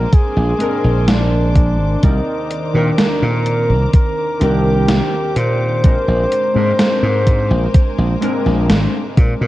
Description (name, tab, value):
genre	vaporwave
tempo	63 BPM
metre	4/4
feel	straight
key	unclear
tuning	A4 = 441 Hz
part	breathy flugelhorn	melody	0.0-8.7 s	D4 to C5	-21 LUFS	equal	tape echo
part	warbly lo-fi synth keys	accompaniment	0.0-9.5 s	Eb3 to D5	-20 LUFS	equal	lush chorus
part	bright symphonic string section	sustained chords	0.0-9.5 s	C5 to D6	-32 LUFS	left 4 dB	vintage 12-bit sampler grit
part	slap bass	bass	0.0-9.5 s	Ab1 to Bb2	-16 LUFS	equal	none
part	electronic kick drum	drums	0.1-9.4 s	none	-11 LUFS	equal	overdrive
part	gated 80s digital drum machine	drums	0.1-9.4 s	hi-hat, snare drum	-18 LUFS	equal	gated reverb, gated reverb snare, overdrive
room	light reverb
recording	cassette tape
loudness	-13 LUFS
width	side -16 dB against mid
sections	0.0-9.5 A section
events	none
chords	0.0 Bb9; 2.0 Cm9; 5.8 Bb9